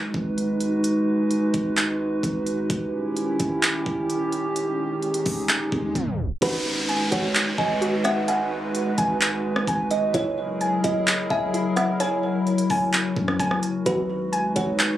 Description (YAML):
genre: hip hop, atmospheric cloud-rap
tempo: 129 BPM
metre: 4/4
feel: half-time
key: G# minor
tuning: A4 = 443 Hz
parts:
  - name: warbly tape-like pad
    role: sustained chords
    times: 0.0-15.0 s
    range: D#3 to B4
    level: -24 LUFS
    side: equal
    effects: chorus, built-in reverb, sidechain pumping
  - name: soft 808-style bass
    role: bass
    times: 0.1-14.8 s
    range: D#1 to F#2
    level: -34 LUFS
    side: right 1 dB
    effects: none
  - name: trap drum kit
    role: drums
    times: 0.1-14.9 s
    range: handclaps, hi-hat, kick drum, rim click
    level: -24 LUFS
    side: equal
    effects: none
  - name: swell and downlifter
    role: sound effects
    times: 4.8-10.1 s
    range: none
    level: -31 LUFS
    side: equal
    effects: none
  - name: kalimba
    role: melody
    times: 6.4-15.0 s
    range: B4 to F#5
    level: -27 LUFS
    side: right 2 dB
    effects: tape echo
  - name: soft round pluck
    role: arpeggios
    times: 6.4-15.0 s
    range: E4 to G#5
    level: -27 LUFS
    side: equal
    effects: chorus, tape echo
room: wet small room reverb, RT60 0.5 s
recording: recorded on a phone in the room, club reverb, tape stop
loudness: -21 LUFS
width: side -12 dB against mid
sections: 0.0-6.4 A section; 6.4-15.0 B section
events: swell 4.8-6.4; tape stop 6.0-6.4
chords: 0.0 G#m7; 2.7 D#7b9; 6.4 G#m7; 10.1 F#9; 13.9 G#m7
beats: 0.37 | 0.84 1.30 1.77 2.23 | 2.70 3.17 3.63 4.09 | 4.56 5.03 5.49 5.96 | 6.42 6.89 7.35 7.82 | 8.28 8.75 9.21 9.68 | 10.14 10.61 11.07 11.54 | 12.00 12.47 12.93 13.40 | 13.86 14.33 14.79